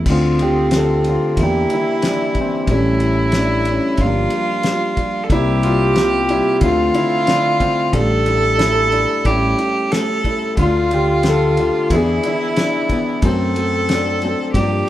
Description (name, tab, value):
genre	acoustic folk-pop ballad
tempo	91 BPM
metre	4/4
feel	straight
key	D minor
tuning	A4 = 440 Hz
part	dark baby grand piano	melody	0.0-14.9 s	C3 to A4	-18 LUFS	left 1 dB	none
part	rich cello	second line	0.0-14.9 s	C4 to A4	-20 LUFS	right 2 dB	none
part	mellow fretless electric bass	bass	0.0-14.8 s	G1 to G2	-20 LUFS	equal	none
part	cloth-damped thuddy drum kit	drums	0.1-14.7 s	crash cymbal, kick drum, ride cymbal, snare drum	-23 LUFS	left 1 dB	none
room	moderate stone room reverb, RT60 1.3 s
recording	band playing live in one room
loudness	-14 LUFS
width	side -13 dB against mid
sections	0.1-14.9 A section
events	none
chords	0.1 D5; 1.4 Em7b5; 2.7 A7; 4.0 Gm7; 5.3 C5; 6.6 Dm7; 7.9 A7sus4; 10.6 Dm; 11.9 E5; 13.2 F#dim